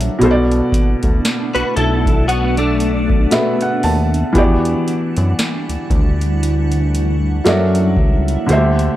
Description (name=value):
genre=contemporary R&B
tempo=58 BPM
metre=4/4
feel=swing 58% on 16ths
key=E minor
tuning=A4 = 440 Hz
part: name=felt-muted upright piano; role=accompaniment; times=0.0-9.0 s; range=B2 to A5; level=-18 LUFS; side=equal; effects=none
part: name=granular cloud pad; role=sustained chords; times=0.0-9.0 s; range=G3 to F#5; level=-23 LUFS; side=right 1 dB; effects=built-in reverb
part: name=fat analog bass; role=bass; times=0.0-8.9 s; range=B1 to F#2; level=-17 LUFS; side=equal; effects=none
part: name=booming analog drum machine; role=drums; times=0.0-9.0 s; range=hi-hat, kick drum, snare drum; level=-18 LUFS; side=equal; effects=none
part: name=direct-recorded clean electric guitar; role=arpeggios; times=1.5-4.1 s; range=A3 to B4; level=-19 LUFS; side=left 2 dB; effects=ensemble chorus, tape echo
room=little or no reverb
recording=dry, gritty hardware recording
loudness=-13 LUFS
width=side -14 dB against mid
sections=0.0-9.0 A section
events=felt piano fill 2.8-4.4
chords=0.2 Bm7; 4.4 Em9; 7.5 F#7alt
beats=| 0.21 1.25 2.28 3.32 | 4.35 5.38 6.42 7.45 | 8.49